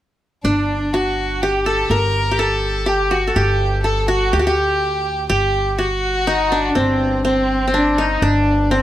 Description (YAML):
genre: Arabic maqam ensemble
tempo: 123 BPM (eighths)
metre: 10/8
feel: straight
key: G maqam nahawand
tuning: A4 = 442 Hz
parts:
  - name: qanun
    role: melody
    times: 0.4-8.8 s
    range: C4 to Bb4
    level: -18 LUFS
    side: left 1 dB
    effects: none
  - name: clear violin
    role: second line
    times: 0.4-8.8 s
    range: C4 to Bb4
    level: -22 LUFS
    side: equal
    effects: none
  - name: upright bass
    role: bass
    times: 0.4-8.8 s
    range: G1 to D2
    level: -22 LUFS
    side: equal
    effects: none
room: moderate studio ambience, RT60 0.5 s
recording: none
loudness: -15 LUFS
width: side -13 dB against mid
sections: 0.4-8.8 A section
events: none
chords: none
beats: | 0.44 0.92 1.41 1.90 2.38 2.87 3.35 3.84 4.33 4.81 | 5.30 5.78 6.27 6.76 7.24 7.73 8.22 8.70